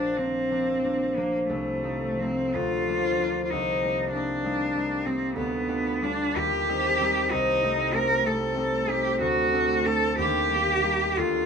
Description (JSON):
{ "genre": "classical, romantic duo for cello and harp", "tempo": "55-66 BPM (dotted quarters)", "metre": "6/8", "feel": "rubato", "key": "Bb major", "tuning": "A4 = 442 Hz", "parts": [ { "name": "clear cello", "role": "melody", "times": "0.0-11.5 s", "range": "A3 to Bb4", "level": "-25 LUFS", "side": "equal", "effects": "none" }, { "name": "concert harp", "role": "accompaniment", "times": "0.0-11.5 s", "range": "Bb1 to G4", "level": "-27 LUFS", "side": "equal", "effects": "none" } ], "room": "light reverb", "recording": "minimal, uncompressed stereo recording", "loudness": "-23 LUFS", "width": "side -6 dB against mid", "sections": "0.0-11.5 A section", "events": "none", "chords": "0.0 Bb; 1.5 F7/C; 2.5 Bb/D; 3.5 Cm7; 5.4 G7/D; 6.4 Cm/Eb; 7.3 Am7b5/C; 9.2 D7; 10.2 Eb", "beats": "0.50 | 1.48 2.54 | 3.51 4.44 | 5.37 6.37 | 7.33 8.26 | 9.21 10.18 | 11.17" }